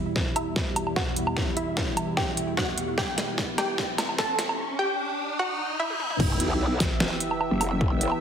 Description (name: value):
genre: heavy wobble dubstep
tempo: 149 BPM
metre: 4/4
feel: half-time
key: E minor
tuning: A4 = 439 Hz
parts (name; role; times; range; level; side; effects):
- wide unison pluck; melody; 0.0-6.0 s; E4 to A5; -30 LUFS; equal; digital delay
- lush unison pad; sustained chords; 0.0-8.2 s; E2 to E5; -31 LUFS; right 1 dB; chorus, sidechain pumping
- riser and sub drop; sound effects; 2.1-7.8 s; none; -34 LUFS; left 1 dB; none
- dubstep drum kit; drums; 0.2-8.2 s; crash cymbal, hi-hat, snare drum, toms, woodblock; -28 LUFS; equal; high-pass filter on hats, studio reverb, high-pass filter on snare, high-pass filter on perc, high-pass filter on toms, high-pass filter on cymbals
- electronic kick drum; drums; 0.2-7.9 s; none; -30 LUFS; equal; studio reverb
- growl bass; bass; 6.2-8.1 s; E1 to B1; -26 LUFS; equal; chorus, overdrive
room: moderate digital room reverb, RT60 1.1 s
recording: heavily compressed radio sound, multiband compression, high-pass filter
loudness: -24 LUFS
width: side -8 dB against mid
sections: 0.0-6.2 A section; 6.2-8.2 B section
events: build-up 0.0-6.2; drum fill 0.0-4.6, 5.9-6.2; filter sweep on synth pluck 0.0-6.2; riser 2.1-6.2; drop 6.2-8.2; impact 6.2-7.8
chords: 0.0 Em